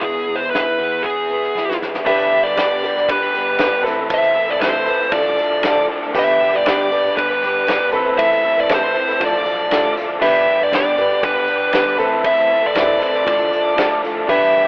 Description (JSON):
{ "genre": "folk rock and heartland rock", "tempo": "118 BPM", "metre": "4/4", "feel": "straight", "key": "unclear", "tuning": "A4 = 440 Hz", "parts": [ { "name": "smooth overdriven lead guitar", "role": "melody", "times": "0.0-14.7 s", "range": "G#4 to E5", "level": "-16 LUFS", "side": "equal", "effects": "slapback echo" }, { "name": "picked plugged-in twelve-string acoustic guitar", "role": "accompaniment", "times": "0.0-14.7 s", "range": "A2 to B4", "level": "-26 LUFS", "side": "left 1 dB", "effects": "none" }, { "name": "crunchy overdriven guitar", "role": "riff", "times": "0.0-14.7 s", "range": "E2 to A4", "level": "-24 LUFS", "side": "equal", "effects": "none" }, { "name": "fingered electric bass", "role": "bass", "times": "0.0-14.7 s", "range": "E1 to E2", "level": "-38 LUFS", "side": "equal", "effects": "none" }, { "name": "soft brush drum kit", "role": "drums", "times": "0.0-14.4 s", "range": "crash cymbal, hi-hat, kick drum, ride cymbal, snare drum", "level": "-24 LUFS", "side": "equal", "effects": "none" }, { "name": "warm baby grand piano", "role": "accompaniment", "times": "2.0-14.7 s", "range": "C4 to B4", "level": "-22 LUFS", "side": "equal", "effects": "none" }, { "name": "tonewheel organ", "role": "sustained chords", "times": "2.1-14.7 s", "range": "G4 to D6", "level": "-28 LUFS", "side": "equal", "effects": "none" }, { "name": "tambourine", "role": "percussion", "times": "2.1-14.5 s", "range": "none", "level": "-49 LUFS", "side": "equal", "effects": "none" } ], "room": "light reverb, small room reverb", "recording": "rough home demo mix, telephone sound", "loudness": "-14 LUFS", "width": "side -27 dB against mid", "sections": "0.0-2.1 A section; 2.1-14.7 B section", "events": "drum fill 1.6-2.1", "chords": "0.0 E; 2.1 G; 3.9 Amadd9; 5.1 Dm/A; 6.1 G; 7.9 Amadd9; 9.2 Dm/A; 10.2 G; 12.0 Amadd9; 13.3 Dm/A", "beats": "| 0.02 0.53 1.04 1.55 | 2.06 2.57 3.08 3.60 | 4.11 4.61 5.12 5.63 | 6.14 6.65 7.16 7.67 | 8.18 8.69 9.20 9.71 | 10.22 10.73 11.24 11.74 | 12.26 12.77 13.28 13.78 | 14.29" }